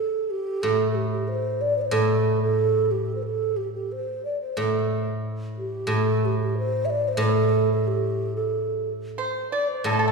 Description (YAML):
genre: chinese traditional, Chinese chamber ensemble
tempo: 91 BPM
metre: 2/4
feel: rubato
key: A yu mode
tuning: A4 = 436 Hz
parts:
  - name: mellow hollow low xiao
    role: melody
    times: 0.0-10.1 s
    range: G4 to E5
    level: -25 LUFS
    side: right 3 dB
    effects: none
  - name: guzheng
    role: accompaniment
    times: 0.6-10.1 s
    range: A2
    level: -25 LUFS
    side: equal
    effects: none
  - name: pipa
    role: second line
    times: 9.2-10.1 s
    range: A4 to D5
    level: -26 LUFS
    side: right 2 dB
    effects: none
  - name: woodblock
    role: percussion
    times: 9.9-10.0 s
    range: none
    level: -32 LUFS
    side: left 3 dB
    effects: none
room: wet concert hall reverb, RT60 2.2 s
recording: recorded in a church or concert hall, studio ambience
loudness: -22 LUFS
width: side -4 dB against mid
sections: 0.0-9.9 A section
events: none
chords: none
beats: | 0.63 1.27 | 1.93 2.58 | 3.23 3.90 | 4.58 5.24 | 5.90 6.55 | 7.20 7.85 | 8.51 9.18 | 9.86